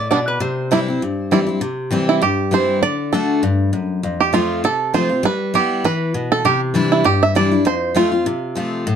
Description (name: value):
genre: bluegrass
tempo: 199 BPM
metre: 4/4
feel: swing 55% on 8ths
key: C major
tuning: A4 = 436 Hz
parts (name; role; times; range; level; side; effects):
- lap resonator guitar; melody; 0.0-1.3 s; B4 to D5; -23 LUFS; equal; none
- picked steel-string acoustic guitar; accompaniment; 0.0-9.0 s; F2 to F#4; -18 LUFS; left 3 dB; none
- bluegrass banjo; melody; 0.1-8.7 s; G3 to E5; -18 LUFS; right 6 dB; none
room: moderate studio ambience, RT60 0.5 s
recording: dark, warm production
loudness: -15 LUFS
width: side -8 dB against mid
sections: 0.0-1.6 A section; 1.6-9.0 B section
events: five-string banjo solo 1.6-9.0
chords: 0.4 C; 2.8 D; 4.0 F; 5.2 G6; 6.4 Cadd9; 7.7 F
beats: 0.10 | 0.41 0.71 1.01 1.31 | 1.61 1.92 2.22 2.52 | 2.82 3.12 3.43 3.73 | 4.03 4.33 4.63 4.94 | 5.24 5.54 5.84 6.14 | 6.45 6.75 7.05 7.35 | 7.66 7.96 8.26 8.56 | 8.86